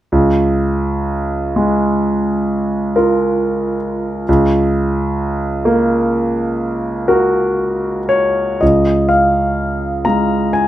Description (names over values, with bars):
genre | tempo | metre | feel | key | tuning
classical, impressionist solo piano | 36-46 BPM (dotted quarters) | 9/8 | rubato | Db major | A4 = 440 Hz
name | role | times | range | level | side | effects
clear concert grand piano | solo | 0.1-10.7 s | Db2 to Bb5 | -13 LUFS | equal | none
room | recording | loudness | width
light reverb | none | -13 LUFS | side -13 dB against mid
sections
0.1-8.6 A section; 8.6-10.7 B section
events
none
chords
0.1 Db6; 4.3 Gb/Db; 8.6 Db6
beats
| 0.12 1.56 2.96 | 4.28 5.65 7.07 | 8.61 10.06